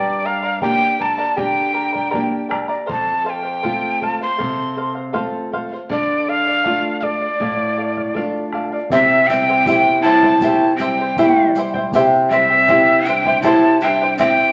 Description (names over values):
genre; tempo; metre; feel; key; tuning
andean folk, Andean ensemble; 80 BPM; 4/4; straight; unclear; A4 = 441 Hz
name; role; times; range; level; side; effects
breathy quena; melody; 0.0-14.5 s; D5 to C6; -20 LUFS; equal; none
charango; accompaniment; 0.0-14.5 s; E4 to Bb5; -22 LUFS; equal; none
nylon-string guitar; accompaniment; 0.0-14.5 s; F2 to G4; -26 LUFS; equal; none
bombo; percussion; 0.6-14.4 s; none; -34 LUFS; equal; none
breathy large pan pipes; second line; 8.9-14.5 s; C4 to E4; -22 LUFS; equal; none
egg shaker; percussion; 8.9-14.4 s; none; -48 LUFS; equal; none
room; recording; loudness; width
wet large studio reverb, RT60 1.1 s; very old 78 rpm record, vinyl crackle; -17 LUFS; mono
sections
0.0-8.9 A section; 8.9-14.5 B section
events
none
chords
0.0 Gm; 2.9 F; 5.9 Dm; 8.9 C